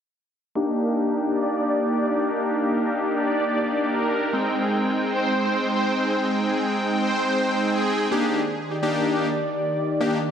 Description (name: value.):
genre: pop.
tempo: 127 BPM.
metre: 4/4.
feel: straight.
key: Eb major.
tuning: A4 = 440 Hz.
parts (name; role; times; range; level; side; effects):
big bright polysynth; accompaniment; 0.6-10.2 s; Ab3 to G5; -22 LUFS; equal; low-pass filter.
supersaw pad; melody; 0.8-8.0 s; Ab4 to D5; -27 LUFS; right 1 dB; low-pass filter, digital delay.
lush unison pad; sustained chords; 8.1-10.3 s; Eb3 to D5; -26 LUFS; equal; chorus.
room: moderate lush hall reverb, RT60 2.6 s.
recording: dark, warm production.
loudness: -21 LUFS.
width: side -8 dB against mid.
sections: 0.6-8.1 A section; 8.1-10.3 B section.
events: filter sweep 0.6-8.1.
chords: 0.6 Ebmaj7; 4.3 Abmaj7; 8.1 Ebmaj7.